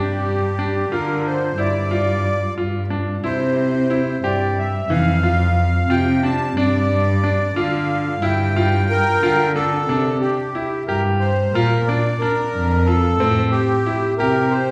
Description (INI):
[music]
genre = contemporary instrumental, chamber music in an uneven meter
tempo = 181 BPM (eighths)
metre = 5/8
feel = straight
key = G dorian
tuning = A4 = 439 Hz
[part]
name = accordion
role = melody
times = 0.0-14.7 s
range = G4 to A5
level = -24 LUFS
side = equal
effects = light tremolo tuning
[part]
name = bright baby grand piano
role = arpeggios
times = 0.0-14.7 s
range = E3 to G4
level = -26 LUFS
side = equal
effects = none
[part]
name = muted cello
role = bass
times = 0.0-14.7 s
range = F2 to D3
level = -22 LUFS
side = equal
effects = none
[sound]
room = wet recital hall reverb, RT60 1.8 s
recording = recorded in a church or concert hall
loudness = -19 LUFS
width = mono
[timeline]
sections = 0.0-9.9 A section; 9.9-14.7 B section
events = none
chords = 0.0 G5; 3.2 C; 4.9 F5; 6.6 G7(no3); 9.9 Cadd9; 11.5 Bb; 13.2 Am7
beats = 0.26 0.59 0.92 1.25 | 1.59 1.92 2.25 2.58 2.92 | 3.25 3.58 3.91 4.24 4.58 | 4.91 5.24 5.57 5.90 6.24 | 6.57 6.90 7.23 7.56 7.90 | 8.23 8.56 8.89 9.22 9.56 | 9.89 10.22 10.55 10.88 11.21 | 11.54 11.88 12.21 12.54 12.87 | 13.20 13.53 13.86 14.20 14.53